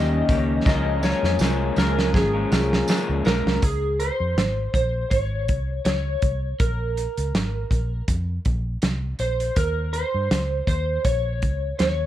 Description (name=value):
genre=indie pop, bedroom pop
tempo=81 BPM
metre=4/4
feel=swing 55% on 16ths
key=Db lydian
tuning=A4 = 440 Hz
part: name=electric slide guitar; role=melody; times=0.0-12.1 s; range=Ab4 to Eb5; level=-26 LUFS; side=equal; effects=analog chorus, digital delay
part: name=electric guitar through a small old amp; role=accompaniment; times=0.0-3.6 s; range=Db3 to Bb4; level=-25 LUFS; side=left 3 dB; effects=wide subtle chorus, warbly pitch drift
part: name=warm analog pad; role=sustained chords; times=0.0-3.6 s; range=Eb3 to Ab4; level=-30 LUFS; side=right 2 dB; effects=chorus
part: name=vintage muted fingered electric bass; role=bass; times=0.0-12.1 s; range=Ab1 to G2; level=-25 LUFS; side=equal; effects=none
part: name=loose indie drum kit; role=drums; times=0.3-12.0 s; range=hi-hat, kick drum, snare drum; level=-23 LUFS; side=right 1 dB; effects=none
part: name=tambourine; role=percussion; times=0.3-3.4 s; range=none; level=-39 LUFS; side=right 6 dB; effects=none
room=moderate studio reverb, RT60 0.5 s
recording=worn, warbling old tape, cassette tape, warbly pitch drift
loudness=-20 LUFS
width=side -12 dB against mid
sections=0.0-3.6 A section; 3.6-12.1 B section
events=drum fill 0.7-3.6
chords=0.0 Eb7; 0.7 Db6; 3.6 Dbmaj7(no3); 9.6 Eb7(no3)